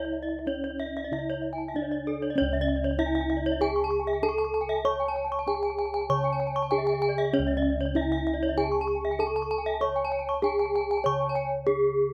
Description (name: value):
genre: Balinese gamelan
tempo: 97 BPM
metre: 4/4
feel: straight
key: C# pelog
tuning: A4 = 439 Hz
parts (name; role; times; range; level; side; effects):
- gamelan-type bronze metallophone; melody; 0.0-12.1 s; C#4 to C#5; -30 LUFS; equal; none
- gamelan-type bronze metallophone; arpeggios; 0.0-11.4 s; A4-20c to C#6; -34 LUFS; equal; slapback echo
- gamelan-type bronze metallophone; arpeggios; 0.0-11.4 s; C#5 to C#6; -38 LUFS; equal; none
- gamelan-type bossed gongs; bass; 0.0-12.1 s; C#2 to C#5; -36 LUFS; equal; none
room: little or no reverb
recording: recorded outdoors, with no room sound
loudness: -28 LUFS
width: mono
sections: 0.0-2.4 A section; 2.4-12.1 B section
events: none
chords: none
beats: 0.46 1.11 1.75 | 2.38 3.00 3.62 4.24 | 4.86 5.48 6.10 6.72 | 7.34 7.96 8.58 9.20 | 9.82 10.44 11.06 11.68